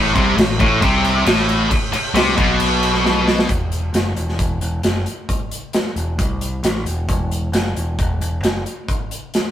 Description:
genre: hard rock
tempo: 134 BPM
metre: 4/4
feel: straight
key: unclear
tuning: A4 = 440 Hz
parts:
  - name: heavy high-gain guitar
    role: riff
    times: 0.0-3.5 s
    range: A2 to C3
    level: -20 LUFS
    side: left 1 dB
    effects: distortion
  - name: overdriven electric guitar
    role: riff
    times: 0.0-3.5 s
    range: A2 to C3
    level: -19 LUFS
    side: left 1 dB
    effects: none
  - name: growling picked electric bass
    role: bass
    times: 0.0-8.6 s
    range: E1 to C2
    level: -21 LUFS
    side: equal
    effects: overdrive
  - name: big rock drum kit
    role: drums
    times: 0.2-9.4 s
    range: crash cymbal, hi-hat, kick drum, snare drum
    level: -19 LUFS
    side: equal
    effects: none
room: light reverb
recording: rough rehearsal-room recording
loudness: -16 LUFS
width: side -11 dB against mid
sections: 0.0-3.5 A section; 3.5-9.5 B section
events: drum fill 3.0-3.5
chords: 0.0 Amadd9; 3.5 Esus2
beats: 0.37 0.82 1.26 | 1.71 2.15 2.60 3.04 | 3.49 3.94 4.38 4.83 | 5.28 5.73 6.18 6.63 | 7.08 7.53 7.98 8.43 | 8.88 9.32

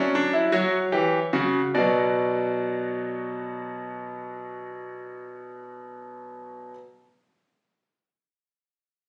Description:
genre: classical, baroque-style 3-part fugue for grand piano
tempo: 47 BPM (dotted quarters)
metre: 6/8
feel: straight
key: B minor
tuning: A4 = 440 Hz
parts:
  - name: bright concert grand piano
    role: solo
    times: 0.0-6.7 s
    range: B2 to D5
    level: -27 LUFS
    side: equal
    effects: none
room: light reverb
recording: recorded on a phone in the room, club reverb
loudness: -25 LUFS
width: mono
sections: 0.0-1.7 A section; 1.7-6.9 B section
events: slowing down 0.0-1.7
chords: 0.0 Dmaj9/F#; 0.5 F#5; 1.7 Bm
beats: 0.52 | 1.74 3.02 | 4.30 5.58

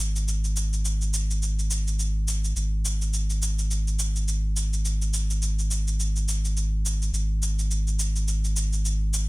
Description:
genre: organic downtempo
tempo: 105 BPM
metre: 4/4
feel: swing 58% on 16ths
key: unclear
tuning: A4 = 440 Hz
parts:
  - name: warm sub bass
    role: bass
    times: 0.0-9.3 s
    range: G#1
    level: -24 LUFS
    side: equal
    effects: none
  - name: cabasa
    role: drums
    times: 0.2-9.3 s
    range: none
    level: -30 LUFS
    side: right 1 dB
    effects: none
room: little or no reverb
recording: none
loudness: -24 LUFS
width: side -21 dB against mid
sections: 0.0-9.3 A section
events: none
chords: none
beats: | 0.28 0.85 1.42 1.99 | 2.56 3.13 3.70 4.28 | 4.85 5.42 5.99 6.56 | 7.13 7.70 8.28 8.85

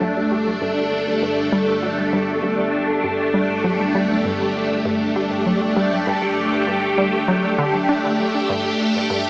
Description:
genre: ambient, sequencer-driven space music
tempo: 99 BPM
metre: 4/4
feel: straight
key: unclear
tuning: A4 = 440 Hz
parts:
  - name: phased string machine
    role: sustained chords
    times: 0.0-9.3 s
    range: A3 to A4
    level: -18 LUFS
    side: equal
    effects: ensemble chorus, phaser
  - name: analog pluck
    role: riff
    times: 0.0-9.3 s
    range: G2 to D4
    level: -23 LUFS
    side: equal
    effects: chorus, tape echo
  - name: analog drone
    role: bass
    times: 0.0-9.3 s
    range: G1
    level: -32 LUFS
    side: equal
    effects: chorus
room: wet huge ambient reverb, RT60 7.6 s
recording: small speaker sound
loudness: -17 LUFS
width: side -25 dB against mid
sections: 0.0-9.3 A section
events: none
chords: 0.0 Gsus2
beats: 0.01 0.62 | 1.22 1.83 2.44 3.04 | 3.65 4.25 4.86 5.47 | 6.07 6.68 7.28 7.89 | 8.50 9.10

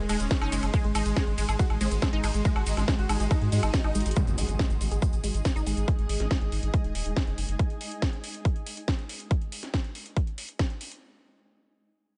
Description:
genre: psychedelic trance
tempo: 140 BPM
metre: 4/4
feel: straight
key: unclear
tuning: A4 = 441 Hz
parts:
  - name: dense compressed supersaw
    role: melody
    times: 0.0-4.1 s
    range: G#3 to G#4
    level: -37 LUFS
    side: equal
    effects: phaser, sidechain pumping, dub echo
  - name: vowel-sweep wobble bass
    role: second line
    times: 0.0-3.4 s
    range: B#3 to D#4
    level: -45 LUFS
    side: equal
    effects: none
  - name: swarming drone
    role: sustained chords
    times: 0.0-9.4 s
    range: G#3 to F#4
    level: -42 LUFS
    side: equal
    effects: built-in reverb, sidechain pumping
  - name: round analog bass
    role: bass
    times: 0.0-7.6 s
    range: D#1 to G#2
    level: -30 LUFS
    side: equal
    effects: none
  - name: granular cloud pad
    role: texture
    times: 0.0-7.6 s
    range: G#4 to B#5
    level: -43 LUFS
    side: equal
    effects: built-in reverb, sidechain pumping
  - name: unison pluck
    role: riff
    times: 0.1-5.7 s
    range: G#3 to G#4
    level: -38 LUFS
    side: equal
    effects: sidechain pumping, dub echo
  - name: techno drum kit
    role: drums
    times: 0.1-11.0 s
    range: hi-hat, ride cymbal, snare drum, woodblock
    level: -36 LUFS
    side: equal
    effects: none
  - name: cabasa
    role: percussion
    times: 0.1-5.9 s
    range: none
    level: -44 LUFS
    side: equal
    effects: none
  - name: electronic kick drum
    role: drums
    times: 0.3-10.7 s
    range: none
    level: -28 LUFS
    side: equal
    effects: overdrive
  - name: impact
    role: sound effects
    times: 4.2-5.9 s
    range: none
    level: -38 LUFS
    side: equal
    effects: none
room: little or no reverb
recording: nothing above 10.3 kHz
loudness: -27 LUFS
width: mono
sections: 0.0-4.2 A section; 4.2-11.0 B section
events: drop 0.0-4.2; drum fill 4.0; impact 4.2-5.9; filter sweep on synth drone 4.2-9.3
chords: 0.0 G#5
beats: 0.31 | 0.74 1.17 1.59 2.02 | 2.45 2.88 3.31 3.74 | 4.17 4.59 5.02 5.45 | 5.88 6.31 6.74 7.17 | 7.59 8.02 8.45 8.88 | 9.31 9.74 10.16 10.59

